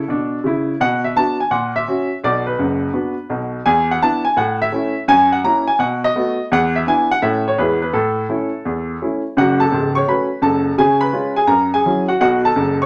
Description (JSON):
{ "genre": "jazz, stride piano", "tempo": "168 BPM", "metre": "4/4", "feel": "swing 66% on 8ths", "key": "A major", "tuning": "A4 = 440 Hz", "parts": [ { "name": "clear baby grand piano", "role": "solo", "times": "0.0-12.9 s", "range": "C#1 to C#6", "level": "-17 LUFS", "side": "equal", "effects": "none" } ], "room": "wet studio reverb, RT60 0.6 s", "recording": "none", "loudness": "-17 LUFS", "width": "mono", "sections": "0.0-9.4 A section; 9.4-12.9 B section", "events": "none", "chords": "0.0 A; 0.8 Bm; 1.5 F#7/A#; 2.2 Bm; 3.7 E5; 4.4 A; 5.1 F#7; 5.8 B7; 6.5 E5; 7.2 A; 7.6 E; 7.9 A; 9.4 F#m; 10.8 C#7; 11.5 F#7; 12.2 B7(no3)" }